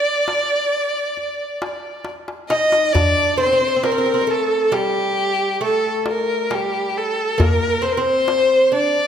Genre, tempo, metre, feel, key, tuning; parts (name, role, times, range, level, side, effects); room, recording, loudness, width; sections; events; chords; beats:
Arabic maqam ensemble; 135 BPM (eighths); 10/8; straight; A4 = 439 Hz
rich violin; melody; 0.0-9.1 s; G4 to Eb5; -18 LUFS; left 1 dB
oud; second line; 0.0-9.1 s; G3 to Eb4; -22 LUFS; right 2 dB
darbuka; percussion; 0.3-8.5 s; -23 LUFS; left 2 dB
wet scoring stage reverb, RT60 2.0 s; -16 LUFS; side -8 dB against mid
0.0-2.9 A section; 2.9-9.1 B section
drum fill 2.1-2.9
0.28 0.72 1.16 1.61 2.05 2.50 | 2.94 3.38 3.83 4.27 4.72 5.16 5.61 6.05 6.49 6.94 | 7.38 7.82 8.27 8.71